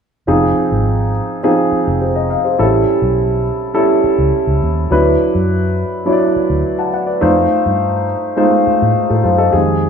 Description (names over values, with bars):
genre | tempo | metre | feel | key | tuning
lush 1970s-style soul | 104 BPM | 4/4 | straight | unclear | A4 = 440 Hz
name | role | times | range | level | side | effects
dark baby grand piano | accompaniment | 0.3-9.9 s | Eb3 to A5 | -13 LUFS | equal | none
vintage muted fingered electric bass | bass | 0.3-9.9 s | F1 to A2 | -18 LUFS | equal | none
room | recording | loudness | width
moderate large studio reverb, RT60 1.3 s | band playing live in one room | -12 LUFS | side -6 dB against mid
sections
0.3-9.5 A section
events
none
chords
0.3 Fm7; 2.6 A7; 4.9 D69; 7.2 F7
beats
| 0.28 0.86 1.44 2.02 | 2.59 3.17 3.75 4.33 | 4.91 5.49 6.07 6.64 | 7.22 7.80 8.38 8.96 | 9.54